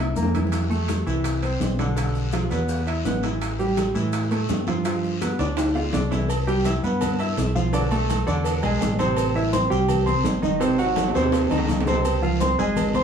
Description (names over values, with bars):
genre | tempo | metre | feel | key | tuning
latin, salsa | 166 BPM | 4/4 | straight | C major | A4 = 435 Hz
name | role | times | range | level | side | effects
clear grand piano | accompaniment | 0.0-13.0 s | C3 to E6 | -23 LUFS | right 2 dB | none
deep dub fingered electric bass | bass | 0.0-13.0 s | Ab1 to A2 | -26 LUFS | left 1 dB | none
bongos and cowbell | percussion | 0.2-12.9 s | none | -32 LUFS | left 3 dB | none
congas | percussion | 0.2-13.0 s | none | -30 LUFS | left 2 dB | none
maracas | percussion | 0.2-13.0 s | none | -43 LUFS | left 5 dB | none
timbales and agogo bells | percussion | 0.3-13.0 s | none | -30 LUFS | right 4 dB | none
guiro | percussion | 0.5-13.0 s | none | -38 LUFS | left 5 dB | none
room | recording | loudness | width
wet studio reverb, RT60 0.6 s | heard from further back in the room, studio reverb | -20 LUFS | side -7 dB against mid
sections
0.0-6.3 A section; 6.3-13.0 B section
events
drum fill 0.0-0.5, 5.4-6.3, 10.6-12.1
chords
0.0 C7; 0.5 Fmaj7; 2.0 Bdim; 2.7 E5; 3.4 A5; 4.9 G7; 6.3 Cmaj7; 7.7 Bm7; 8.5 E7; 9.2 Am7; 10.6 Ab7; 12.1 Dbmaj7